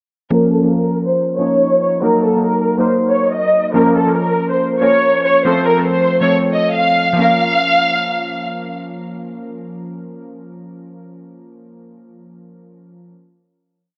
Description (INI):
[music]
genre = hip hop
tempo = 140 BPM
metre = 4/4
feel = half-time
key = Bb harmonic minor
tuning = A4 = 439 Hz
[part]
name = warm symphonic violin section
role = melody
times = 0.3-8.4 s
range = A4 to F5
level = -17 LUFS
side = equal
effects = low-pass filter
[part]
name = glassy digital keys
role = accompaniment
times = 0.3-13.1 s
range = F3 to Bb4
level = -20 LUFS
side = equal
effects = chorus, low-pass filter
[sound]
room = light reverb, small room ambience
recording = none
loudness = -15 LUFS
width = mono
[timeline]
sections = 0.3-7.2 breakdown; 7.2-10.6 final chord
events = filter sweep 0.3-7.2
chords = 0.3 Bbm; 2.0 Ebm; 3.7 Bbm; 5.5 F; 7.2 Bbm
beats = | 0.32 0.74 1.17 1.60 | 2.03 2.46 2.89 3.32 | 3.75 4.17 4.60 5.03 | 5.46 5.89 6.32 6.75 | 7.17 7.60 8.03 8.46 | 8.89 9.32 9.74 10.17